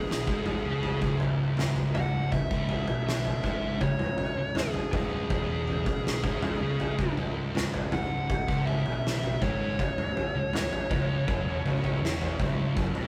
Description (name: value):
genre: stoner and doom metal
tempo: 80 BPM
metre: 4/4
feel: straight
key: C# minor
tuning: A4 = 437 Hz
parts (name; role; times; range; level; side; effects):
- fuzz lead guitar; melody; 0.0-13.1 s; G#4 to F#5; -36 LUFS; equal; distortion
- thick fuzz guitar; riff; 0.0-13.1 s; C#2 to C#3; -34 LUFS; equal; distortion
- thick fuzz guitar; riff; 0.0-13.1 s; C#2 to C#3; -38 LUFS; equal; none
- overdriven picked electric bass; bass; 0.0-13.1 s; C#1 to C#2; -39 LUFS; equal; none
- oversized low-tuned drum kit; drums; 0.1-13.1 s; kick drum, snare drum, toms; -32 LUFS; equal; none
- mellow tonewheel organ; sustained chords; 2.3-13.1 s; C#3 to C#4; -44 LUFS; equal; none
room: moderate stone room reverb, RT60 1.1 s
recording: rough rehearsal-room recording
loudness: -29 LUFS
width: mono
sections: 0.0-13.1 A section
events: none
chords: 0.0 C#m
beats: 0.09 0.83 1.58 | 2.32 3.07 3.81 4.56 | 5.30 6.05 6.79 7.54 | 8.28 9.03 9.78 10.52 | 11.27 12.02 12.76